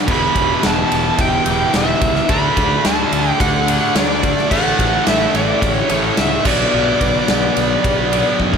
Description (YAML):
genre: hard rock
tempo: 108 BPM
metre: 4/4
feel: straight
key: E dorian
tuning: A4 = 435 Hz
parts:
  - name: phased analog pad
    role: sustained chords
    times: 0.0-8.6 s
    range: G4 to D6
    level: -30 LUFS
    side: equal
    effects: none
  - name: bluesy overdriven lead guitar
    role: melody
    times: 0.1-8.4 s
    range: C#5 to B5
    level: -19 LUFS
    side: equal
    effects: distortion, slapback echo
  - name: distorted electric guitar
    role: riff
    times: 0.1-8.6 s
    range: E2 to D4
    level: -23 LUFS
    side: left 10 dB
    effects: distortion
  - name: high-gain distorted guitar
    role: riff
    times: 0.1-8.6 s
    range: E2 to D4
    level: -21 LUFS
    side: right 9 dB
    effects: distortion, slapback echo
  - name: sludgy distorted guitar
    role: riff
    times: 0.1-8.6 s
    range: A2 to G4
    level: -27 LUFS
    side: left 1 dB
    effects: none
  - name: growling fingered electric bass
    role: bass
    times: 0.1-8.6 s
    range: E1 to F#2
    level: -23 LUFS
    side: left 1 dB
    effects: overdrive
  - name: huge arena drum kit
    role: drums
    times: 0.1-8.6 s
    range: crash cymbal, kick drum, ride cymbal, snare drum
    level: -18 LUFS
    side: equal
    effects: none
room: moderate lush hall reverb, RT60 1.8 s, small room ambience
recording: big arena sound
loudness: -13 LUFS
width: side -6 dB against mid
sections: 0.0-8.6 A section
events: drum fill 8.4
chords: 0.1 Em; 2.3 D; 4.5 A; 6.5 Bm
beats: | 0.08 0.63 1.19 1.74 | 2.30 2.85 3.40 3.96 | 4.51 5.07 5.62 6.18 | 6.73 7.29 7.84 8.40